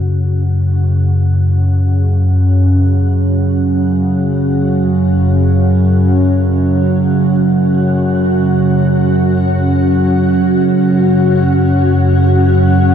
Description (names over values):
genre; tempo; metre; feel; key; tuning
dark ambient drone; free time; none; none; unclear; A4 = 440 Hz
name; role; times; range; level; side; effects
granular cloud pad; sustained chords; 0.0-12.9 s; C#4 to F#5; -19 LUFS; left 2 dB; built-in reverb
analog drone; drone; 0.0-12.9 s; F#2 to C#3; -11 LUFS; equal; chorus
quartz singing bowl; texture; 0.0-12.9 s; F#4; -28 LUFS; left 5 dB; none
room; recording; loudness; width
wet huge ambient reverb, RT60 7.5 s; dark, warm production; -10 LUFS; side -8 dB against mid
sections
0.0-12.9 A section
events
fade-in on ambient pad 0.0-12.9; filter sweep on synth drone 0.0-12.9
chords
0.0 F#5